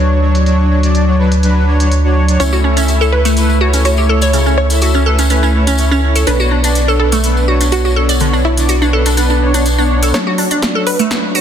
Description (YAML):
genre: progressive house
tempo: 124 BPM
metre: 4/4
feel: straight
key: D major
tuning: A4 = 440 Hz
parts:
  - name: soft supersaw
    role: stabs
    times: 0.0-11.4 s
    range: F#3 to E5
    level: -16 LUFS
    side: left 1 dB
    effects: vintage 12-bit sampler grit, sidechain pumping, low-pass filter, digital delay
  - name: round analog bass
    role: bass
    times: 0.0-11.4 s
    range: A1 to D2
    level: -13 LUFS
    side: equal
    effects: tube saturation, sidechain pumping, high-pass filter
  - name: big-room dance drum kit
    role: drums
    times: 0.3-11.4 s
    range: hi-hat, snare drum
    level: -21 LUFS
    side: equal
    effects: low-pass filter on hats, low-pass filter on snare, low-pass filter on room
  - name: wide unison pluck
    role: melody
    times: 2.4-11.4 s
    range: E4 to C#5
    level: -21 LUFS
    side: right 1 dB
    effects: vintage 12-bit sampler grit, sidechain pumping, digital delay
  - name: glassy wavetable pluck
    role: arpeggios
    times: 2.4-11.4 s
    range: C#3 to D5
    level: -16 LUFS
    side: right 1 dB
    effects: chorus, phaser, vintage 12-bit sampler grit, sidechain pumping, digital delay
  - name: tambourine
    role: percussion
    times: 2.4-10.1 s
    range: none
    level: -25 LUFS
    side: left 3 dB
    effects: none
  - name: swell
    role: sound effects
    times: 9.4-10.1 s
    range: none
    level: -24 LUFS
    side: equal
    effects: none
  - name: electronic kick drum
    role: drums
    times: 10.1-11.2 s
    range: none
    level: -27 LUFS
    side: equal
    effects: none
room: moderate lush hall reverb, RT60 2.0 s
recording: dense, heavily limited modern master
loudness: -10 LUFS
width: side -9 dB against mid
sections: 0.0-10.1 A section; 10.1-11.4 B section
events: swell 9.4-10.1; build-up 10.1-11.4; drum fill 10.1-11.4; filter sweep on supersaw synth 10.1-11.4; filter sweep 10.1-11.4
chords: 0.0 Dmaj7; 2.4 A/C#; 6.3 Bmadd9; 10.1 Dmaj7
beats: | 0.46 0.95 1.43 1.92 | 2.40 2.88 3.37 3.85 | 4.33 4.82 5.30 5.79 | 6.27 6.75 7.24 7.72 | 8.21 8.69 9.17 9.66 | 10.14 10.62 11.11